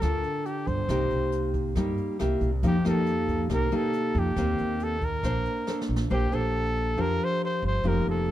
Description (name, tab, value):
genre	bossa nova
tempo	138 BPM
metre	4/4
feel	straight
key	Bb major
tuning	A4 = 439 Hz
part	warm trumpet	melody	0.0-8.3 s	G4 to C5	-30 LUFS	equal	none
part	nylon-string guitar	accompaniment	0.0-8.3 s	C3 to C5	-28 LUFS	equal	none
part	upright bass	bass	0.0-8.3 s	F1 to G2	-29 LUFS	equal	none
part	jazz brush drum kit	drums	0.0-6.1 s	hi-hat, kick drum, rim click, snare drum	-35 LUFS	right 1 dB	none
room	light reverb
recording	dark, warm production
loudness	-24 LUFS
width	side -13 dB against mid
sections	0.0-6.1 A section; 6.1-8.3 A section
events	drum fill 5.7-6.1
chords	0.0 G7(no3); 0.9 Cm7; 2.2 C7; 2.6 F9sus4; 4.4 Eb6; 5.2 Bbmaj9; 6.1 Bb69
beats	0.03 0.46 | 0.89 1.33 1.76 2.20 | 2.63 3.07 3.50 3.94 | 4.37 4.80 5.24 5.67 | 6.10 6.54 6.97 7.41 | 7.84 8.27